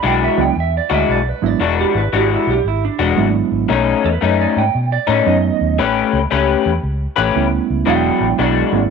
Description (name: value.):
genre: blues.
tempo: 115 BPM.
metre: 4/4.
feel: swing 65% on 8ths.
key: E mixolydian.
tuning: A4 = 440 Hz.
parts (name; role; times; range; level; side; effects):
electric guitar through a small old amp; second line; 0.0-8.9 s; D4 to G5; -20 LUFS; right 12 dB; none.
electric guitar through a small old amp; riff; 0.0-8.8 s; B2 to B4; -16 LUFS; left 10 dB; lush chorus.
vintage muted fingered electric bass; bass; 0.0-8.8 s; E1 to B2; -20 LUFS; equal; none.
bright reed electric piano; accompaniment; 0.4-8.9 s; F#3 to E4; -19 LUFS; right 13 dB; none.
room: light reverb.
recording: 1960s-style stereo with parts hard left and right.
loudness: -14 LUFS.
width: side -5 dB against mid.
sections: 0.0-8.9 A section.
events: clean electric guitar solo 0.0-8.9.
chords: 0.0 E9; 3.7 B9; 5.8 A9; 7.9 E9.